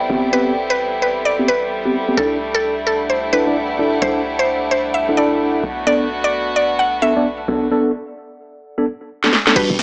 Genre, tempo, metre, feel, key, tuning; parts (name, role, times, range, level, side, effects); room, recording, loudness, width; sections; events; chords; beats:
UK garage, two-step garage; 130 BPM; 4/4; swing 61% on 16ths; A4 = 440 Hz
warm studio violin section; sustained chords; 0.0-9.8 s; G3 to F#4; -23 LUFS; equal; sidechain pumping, low-pass filter
hollow knocking FM bass; bass; 0.0-9.8 s; E1 to C2; -32 LUFS; equal
warbly tape-like pad; texture; 0.0-9.8 s; A4 to G5; -26 LUFS; equal; chorus, built-in reverb, sidechain pumping
tine electric piano; stabs; 0.1-9.7 s; G3 to D5; -18 LUFS; equal; overdrive, fast stereo tremolo, low-pass filter
mallet-like synth pluck; melody; 0.3-9.8 s; G4 to F#5; -18 LUFS; equal; chorus, analog delay
garage drum kit; drums; 9.2-9.8 s; crash cymbal, hi-hat, snare drum; -14 LUFS; equal
electronic kick drum; drums; 9.6-9.7 s; -27 LUFS; equal
light reverb, digital ambience; dry, gritty hardware recording, small speaker sound; -15 LUFS; side -34 dB against mid
0.0-9.6 A section
drum fill 9.2-9.6
0.0 Am9; 2.2 C69; 5.6 Bm7
| 0.33 0.79 1.25 1.72 | 2.18 2.64 3.10 3.56 | 4.02 4.48 4.95 5.41 | 5.87 6.33 6.79 7.25 | 7.71 8.18 8.64 9.10 | 9.56